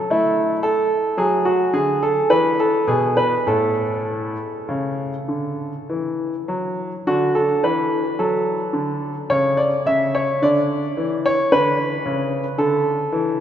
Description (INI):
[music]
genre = classical, baroque-style suite movement for grand piano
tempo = 49-58 BPM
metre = 3/4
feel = rubato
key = A major, D major from 7.1 s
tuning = A4 = 436 Hz
[part]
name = bright grand piano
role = solo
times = 0.0-13.4 s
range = A2 to E5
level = -18 LUFS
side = equal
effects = none
[sound]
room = wet cathedral reverb, RT60 4.6 s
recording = recorded in a church or concert hall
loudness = -18 LUFS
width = side -9 dB against mid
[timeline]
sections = 0.0-7.1 A section; 7.1-13.4 A section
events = none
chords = 0.1 N.C.; 1.2 D; 2.3 E5; 3.5 A; 7.1 D; 9.3 N.C.; 10.4 D5